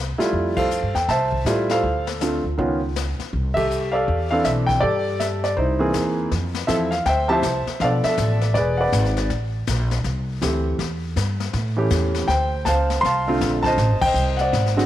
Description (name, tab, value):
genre	jazz piano trio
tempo	161 BPM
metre	4/4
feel	swing 63% on 8ths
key	C major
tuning	A4 = 440 Hz
part	upright bass	bass	0.0-14.9 s	Eb1 to A2	-24 LUFS	equal	none
part	warm concert grand piano	melody	0.2-14.9 s	D3 to C6	-20 LUFS	equal	none
part	jazz brush drum kit	drums	0.2-14.9 s	brushed snare drum, crash cymbal, hi-hat, kick drum, ride cymbal, snare drum	-30 LUFS	left 6 dB	none
room	light reverb, studio reverb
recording	1960s-style stereo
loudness	-19 LUFS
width	side -13 dB against mid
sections	0.0-6.3 A section; 6.3-14.9 B section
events	band accent 0.5, 3.5, 14.0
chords	0.0 Fmaj9; 1.8 Dm7; 2.6 Db9; 3.3 C69; 5.6 C7alt; 6.3 Fmaj7; 7.8 Bm7b5; 8.6 E7; 9.3 Am7; 10.8 Em; 11.5 A7; 12.3 Dm7; 13.8 Am7b5